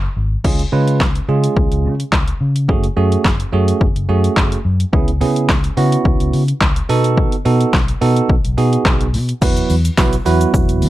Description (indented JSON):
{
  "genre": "dance-pop",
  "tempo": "107 BPM",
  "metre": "4/4",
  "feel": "straight",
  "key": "unclear",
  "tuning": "A4 = 440 Hz",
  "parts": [
    { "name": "vintage muted fingered electric bass", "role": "bass", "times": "0.0-10.9 s", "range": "E1 to C#3", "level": "-17 LUFS", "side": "left 1 dB", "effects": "sidechain pumping" },
    { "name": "barky tine electric piano", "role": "accompaniment", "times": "0.4-10.9 s", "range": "F#3 to B4", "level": "-18 LUFS", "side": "right 5 dB", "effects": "sidechain pumping, plate reverb" },
    { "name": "deep house drum kit", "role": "drums", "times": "0.4-10.9 s", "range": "crash cymbal, handclaps, hi-hat, kick drum, shaker, snare drum", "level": "-17 LUFS", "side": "left 1 dB", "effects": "overdrive" },
    { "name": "tambourine", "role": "percussion", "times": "9.4-10.9 s", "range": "none", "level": "-35 LUFS", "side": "left 8 dB", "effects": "none" }
  ],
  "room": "light reverb",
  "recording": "dark, warm production",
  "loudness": "-13 LUFS",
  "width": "side -15 dB against mid",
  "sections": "0.4-9.4 A section; 9.4-10.9 B section",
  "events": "none",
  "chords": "0.4 C#; 2.7 F#madd9; 4.9 C#m7; 6.9 B7; 9.4 Esus2",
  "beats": "| 0.45 1.01 1.57 2.13 | 2.69 3.25 3.81 4.37 | 4.93 5.49 6.05 6.61 | 7.17 7.74 8.30 8.86 | 9.42 9.98 10.54"
}